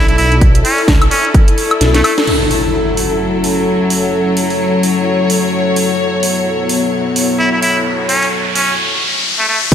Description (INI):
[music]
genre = bass house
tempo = 129 BPM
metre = 4/4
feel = swing 58% on 16ths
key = F# minor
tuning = A4 = 440 Hz
[part]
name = trumpet with straight mute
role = melody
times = 0.0-2.1, 7.4-9.6 s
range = A3 to E4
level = -17 LUFS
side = equal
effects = vintage 12-bit sampler grit, diffuse ambient delay
[part]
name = phased detuned saw bass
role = bass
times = 0.0-2.0, 9.7 s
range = B1 to D2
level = -14 LUFS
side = equal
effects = phaser, sidechain pumping
[part]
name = dark chamber string section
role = texture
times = 0.0-8.8 s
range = F#3 to D5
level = -17 LUFS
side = left 2 dB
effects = sidechain pumping
[part]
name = house drum kit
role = drums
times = 0.1-9.7 s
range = crash cymbal, hi-hat, snare drum, woodblock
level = -18 LUFS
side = equal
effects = overdrive
[part]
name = electronic kick drum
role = drums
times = 0.4-1.5, 9.7 s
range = none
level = -10 LUFS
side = equal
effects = overdrive
[part]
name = dark analog pad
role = sustained chords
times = 2.7-9.7 s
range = F#3 to A4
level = -17 LUFS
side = left 2 dB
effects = chorus, sidechain pumping
[part]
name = impact, riser and sub drop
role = sound effects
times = 2.3-9.7 s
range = none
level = -19 LUFS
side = equal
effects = none
[sound]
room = moderate lush hall reverb, RT60 1.9 s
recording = dreamy mix soaked in reverb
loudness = -11 LUFS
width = side -9 dB against mid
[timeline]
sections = 0.0-2.3 A section; 2.3-9.7 B section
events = kick drops out 1.8-2.3; drum fill 1.8-2.3; band accent 2.2; impact 2.3-4.1; riser 6.9-9.7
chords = 0.0 Bm; 2.3 F#m